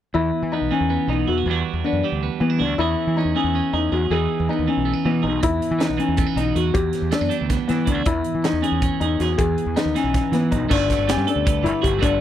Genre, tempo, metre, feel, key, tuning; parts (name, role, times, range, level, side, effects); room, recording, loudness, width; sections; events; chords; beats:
math rock and midwest emo; 318 BPM (eighths); 7/8; straight; A4 = 437 Hz
felt-muted upright piano; arpeggios; 0.1-12.2 s; B3 to G#4; -22 LUFS; left 5 dB
growling fingered electric bass; bass; 0.1-12.2 s; G1 to E3; -24 LUFS; right 1 dB; overdrive
twelve-string electric guitar; accompaniment; 0.2-12.2 s; E2 to A4; -25 LUFS; right 11 dB
crisp fusion drum kit; drums; 5.4-12.1 s; crash cymbal, hi-hat, kick drum, snare drum; -25 LUFS; right 1 dB
little or no reverb; -18 LUFS; side -11 dB against mid
0.1-10.7 A section; 10.7-12.2 B section
0.1 E5; 1.5 Gmaj7/E; 2.8 Emaj13; 4.1 Emaj7; 5.4 E5; 6.7 Gmaj7/E; 8.1 Emaj13; 9.4 Emaj7; 10.7 Gmaj9
| 0.15 0.34 0.52 0.71 0.90 1.09 1.28 | 1.47 1.66 1.84 2.03 2.22 2.41 2.60 | 2.79 2.98 3.16 3.35 3.54 3.73 3.92 | 4.11 4.29 4.48 4.67 4.86 5.05 5.24 | 5.43 5.62 5.80 5.99 6.18 6.37 6.56 | 6.75 6.94 7.12 7.31 7.50 7.69 7.88 | 8.07 8.26 8.45 8.63 8.82 9.01 9.20 | 9.39 9.58 9.76 9.95 10.14 10.33 10.52 | 10.71 10.89 11.08 11.27 11.46 11.65 11.83 | 12.02